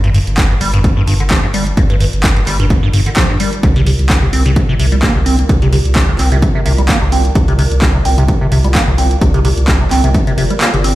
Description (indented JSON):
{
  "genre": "acid house",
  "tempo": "129 BPM",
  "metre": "4/4",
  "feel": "swing 55% on 16ths",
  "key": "unclear",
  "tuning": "A4 = 440 Hz",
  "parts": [
    { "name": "liquid acid bass", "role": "riff", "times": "0.0-10.9 s", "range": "G2 to C4", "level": "-16 LUFS", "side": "equal", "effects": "phaser, overdrive, cassette tape, ping-pong delay" },
    { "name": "saturated sub bass", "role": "bass", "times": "0.0-10.9 s", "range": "G1 to G2", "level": "-15 LUFS", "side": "equal", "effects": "sidechain pumping" },
    { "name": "punchy analog drum machine", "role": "drums", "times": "0.0-10.9 s", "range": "handclaps, hi-hat", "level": "-19 LUFS", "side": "right 1 dB", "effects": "overdrive" },
    { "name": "granular cloud pad", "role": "texture", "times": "0.1-10.9 s", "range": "F4 to D5", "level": "-26 LUFS", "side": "equal", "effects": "built-in reverb, sidechain pumping" },
    { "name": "electronic kick drum", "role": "drums", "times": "0.4-10.2 s", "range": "none", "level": "-14 LUFS", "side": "equal", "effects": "overdrive" }
  ],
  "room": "light reverb",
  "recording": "played on a big sound system in a bare room, stone room reverb",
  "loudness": "-10 LUFS",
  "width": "side -16 dB against mid",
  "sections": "0.0-10.9 A section",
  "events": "fade-in on ambient pad 0.0-10.9; filter sweep on acid bass 0.0-10.9; kick drops out 10.6-10.9",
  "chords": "0.0 Gm7; 3.6 C5",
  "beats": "0.38 0.84 1.31 | 1.77 2.24 2.70 3.17 | 3.63 4.10 4.56 5.03 | 5.49 5.96 6.42 6.89 | 7.35 7.82 8.29 8.75 | 9.21 9.68 10.14 10.61"
}